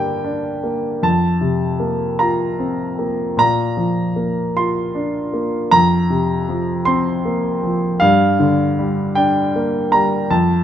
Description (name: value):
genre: classical, lyrical solo piano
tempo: 52 BPM (dotted quarters)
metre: 6/8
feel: rubato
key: unclear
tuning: A4 = 440 Hz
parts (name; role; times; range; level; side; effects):
- warm concert grand piano; solo; 0.0-10.6 s; F2 to C6; -15 LUFS; equal; none
room: light reverb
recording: close, detailed microphones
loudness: -15 LUFS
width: side -10 dB against mid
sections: 0.0-10.6 A section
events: none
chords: 0.0 Gm; 1.0 Fsus4; 3.4 Bbadd9; 5.7 Fsus4; 8.0 Gm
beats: | 1.03 2.21 | 3.39 4.57 | 5.73 6.88 | 8.02 9.16 | 10.31